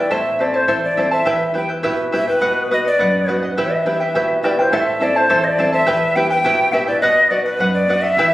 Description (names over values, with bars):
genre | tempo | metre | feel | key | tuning
andean folk, Andean ensemble | 104 BPM | 2/4 | straight | E minor | A4 = 440 Hz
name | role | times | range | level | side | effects
hollow quena | melody | 0.0-8.3 s | B4 to G5 | -17 LUFS | equal | none
charango | accompaniment | 0.0-8.3 s | E4 to A5 | -19 LUFS | right 1 dB | none
nylon-string guitar | accompaniment | 0.0-8.3 s | E2 to A4 | -24 LUFS | left 1 dB | none
bombo | percussion | 0.1-8.3 s | none | -35 LUFS | equal | none
room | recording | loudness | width
moderate studio reverb, RT60 0.5 s | recorded on a phone in the room, studio reverb, compression | -14 LUFS | side -16 dB against mid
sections
0.0-4.7 A section; 4.7-8.3 A section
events
none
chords
0.1 Am; 1.3 Em; 2.4 B; 3.6 Em; 4.7 Am; 5.9 Em; 7.0 B